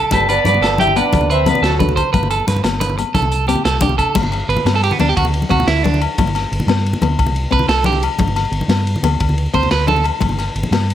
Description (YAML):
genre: highlife guitar band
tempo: 119 BPM (dotted quarters)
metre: 12/8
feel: straight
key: G major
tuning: A4 = 439 Hz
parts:
  - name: nylon-string guitar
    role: accompaniment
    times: 0.0-10.9 s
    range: A3 to D4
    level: -23 LUFS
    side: left 7 dB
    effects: none
  - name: electric guitar at the edge of break-up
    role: arpeggios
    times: 0.0-10.0 s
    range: B3 to C5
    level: -19 LUFS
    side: right 6 dB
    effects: plate reverb, tape echo
  - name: clean electric guitar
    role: melody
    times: 0.1-2.0 s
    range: F#4 to G5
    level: -16 LUFS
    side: equal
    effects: plate reverb
  - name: clear trombone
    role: second line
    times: 0.1-2.0 s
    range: F#3 to E4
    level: -26 LUFS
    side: right 4 dB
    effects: plate reverb
  - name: hollow-body short-scale fingered electric bass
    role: bass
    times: 0.1-10.9 s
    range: G1 to G2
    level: -19 LUFS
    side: equal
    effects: none
  - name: crunchy breakbeat drum kit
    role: drums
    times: 0.1-10.9 s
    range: crash cymbal, hi-hat, kick drum, ride cymbal, snare drum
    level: -22 LUFS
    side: equal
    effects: none
  - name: agogo bells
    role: percussion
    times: 0.1-10.9 s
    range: none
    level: -24 LUFS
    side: left 9 dB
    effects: none
  - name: congas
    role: percussion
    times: 0.1-10.7 s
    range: none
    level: -23 LUFS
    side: left 2 dB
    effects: none
room: light reverb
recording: none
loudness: -13 LUFS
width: side -11 dB against mid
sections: 0.0-4.2 A section; 4.2-10.9 B section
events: clean electric guitar solo 4.2-10.9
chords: 0.1 G; 1.1 D; 2.1 G; 3.1 C5; 4.2 G; 5.2 D9; 6.2 G; 7.2 Am11/C; 8.2 G; 9.2 Amadd11/D; 10.2 G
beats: | 0.12 0.62 1.13 1.63 | 2.14 2.64 3.15 3.65 | 4.16 4.66 5.17 5.67 | 6.18 6.68 7.19 7.70 | 8.20 8.71 9.21 9.72 | 10.22 10.73